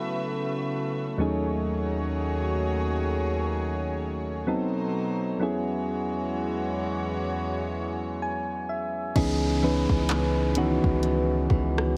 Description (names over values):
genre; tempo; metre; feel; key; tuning
contemporary R&B; 64 BPM; 4/4; swing 58% on 16ths; C# minor; A4 = 444 Hz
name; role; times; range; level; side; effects
soft electric-piano-like synth keys; accompaniment; 0.0-12.0 s; D#2 to G#5; -30 LUFS; equal; chorus
warm studio string section; sustained chords; 0.0-9.1 s; D#2 to E5; -33 LUFS; equal; none
nylon-string guitar; arpeggios; 9.2-12.0 s; C#3 to B3; -34 LUFS; equal; digital delay
warm 808-style bass; bass; 9.2-12.0 s; C#2; -30 LUFS; equal; none
smooth R&B drum kit; drums; 9.2-12.0 s; crash cymbal, handclaps, hi-hat, kick drum, rim click; -30 LUFS; equal; none
downlifter; sound effects; 9.2-12.0 s; none; -42 LUFS; equal; none
room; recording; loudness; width
light reverb, digital ambience; none; -27 LUFS; mono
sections
0.0-9.2 A section; 9.2-12.0 B section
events
synth keys fill 7.7-9.2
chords
0.0 A69/C#; 1.2 F#m69/D#; 4.5 B7b9; 5.4 E69; 9.2 C#m9